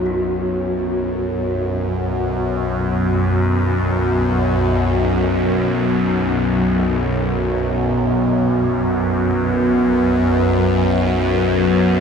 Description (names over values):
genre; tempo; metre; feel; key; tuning
dark ambient drone; free time; none; none; unclear; A4 = 437 Hz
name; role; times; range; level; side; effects
deep dark ambient pad; sustained chords; 0.0-12.0 s; B3 to C#5; -20 LUFS; equal; chorus, built-in reverb
gamelan-type bronze metallophone; arpeggios; 0.0-4.4 s; F#4; -27 LUFS; equal; ping-pong delay
bowed-like drone; drone; 0.0-12.0 s; B1 to F#2; -18 LUFS; equal; built-in reverb, phaser
room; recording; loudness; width
wet cathedral reverb, RT60 5.2 s; none; -16 LUFS; side -6 dB against mid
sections
0.0-12.0 A section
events
fade-out on ambient pad 0.0-12.0; fade-out on bronze metallophone 0.0-12.0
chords
0.0 Bsus2